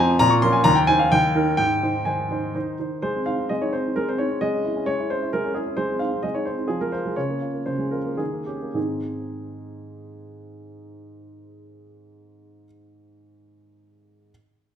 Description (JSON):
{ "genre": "classical-period piano sonatina", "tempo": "105-134 BPM", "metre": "3/4", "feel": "rubato", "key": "Ab major", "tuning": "A4 = 440 Hz", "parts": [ { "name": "warm grand piano", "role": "solo", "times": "0.0-14.3 s", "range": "Eb2 to Db6", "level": "-20 LUFS", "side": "equal", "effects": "none" } ], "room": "wet recital hall reverb, RT60 1.4 s", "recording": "none", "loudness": "-20 LUFS", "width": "side -8 dB against mid", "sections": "0.0-3.0 A section; 3.0-8.8 B section; 8.8-12.1 C section", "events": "slowing down 5.1-8.8", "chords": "0.2 Bbm; 0.7 Eb69; 1.1 Eb; 1.6 Ab; 4.4 Dbm/Ab; 5.8 Ab; 6.7 Fm; 7.2 Bbm7/Db; 8.2 Eb7; 8.8 Ab" }